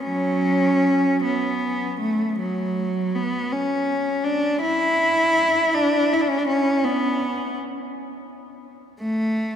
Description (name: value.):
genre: classical, free, expressive piece for unaccompanied cello.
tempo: 48-58 BPM (dotted quarters).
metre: 6/8.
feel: rubato.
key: unclear.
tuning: A4 = 439 Hz.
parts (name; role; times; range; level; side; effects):
rich cello; solo; 0.0-9.6 s; F#3 to E4; -20 LUFS; equal; none.
room: wet cathedral reverb, RT60 4.9 s.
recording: minimal, uncompressed stereo recording.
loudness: -19 LUFS.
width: side -9 dB against mid.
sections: 0.0-9.6 A section.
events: none.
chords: none.